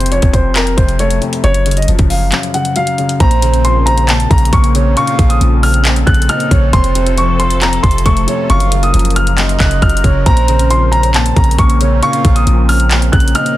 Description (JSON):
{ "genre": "hip hop, trap", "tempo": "136 BPM", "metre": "4/4", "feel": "half-time", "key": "Bb harmonic minor", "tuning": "A4 = 440 Hz", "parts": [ { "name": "dark baby grand piano", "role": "melody", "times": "0.0-13.6 s", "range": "Bb4 to Gb6", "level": "-17 LUFS", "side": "equal", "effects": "tape echo" }, { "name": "felt-muted upright piano", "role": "accompaniment", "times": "0.0-13.6 s", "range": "F2 to Bb3", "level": "-18 LUFS", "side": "left 4 dB", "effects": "none" }, { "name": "warm 808-style bass", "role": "bass", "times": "0.0-13.3 s", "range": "F1 to Bb1", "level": "-13 LUFS", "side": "equal", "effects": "none" }, { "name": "trap drum kit", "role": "drums", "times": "0.0-13.6 s", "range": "handclaps, hi-hat, kick drum", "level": "-14 LUFS", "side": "equal", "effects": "none" }, { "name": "breathy flute-like synth lead", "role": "second line", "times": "3.2-13.6 s", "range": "C5 to F5", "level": "-22 LUFS", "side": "right 6 dB", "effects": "chorus, tape echo" }, { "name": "sweeping resonant pad", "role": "sustained chords", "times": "3.2-13.6 s", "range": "Db3 to Bb4", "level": "-24 LUFS", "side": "right 1 dB", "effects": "chorus" } ], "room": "digital ambience", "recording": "dense, heavily limited modern master", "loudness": "-9 LUFS", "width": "side -15 dB against mid", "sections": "0.0-3.2 A section; 3.2-13.6 B section", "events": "break 2.3-3.2", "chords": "0.0 F; 1.4 Gb5; 3.2 Bbmadd9; 6.7 F; 8.5 Gbmaj7; 10.3 Bbmadd9" }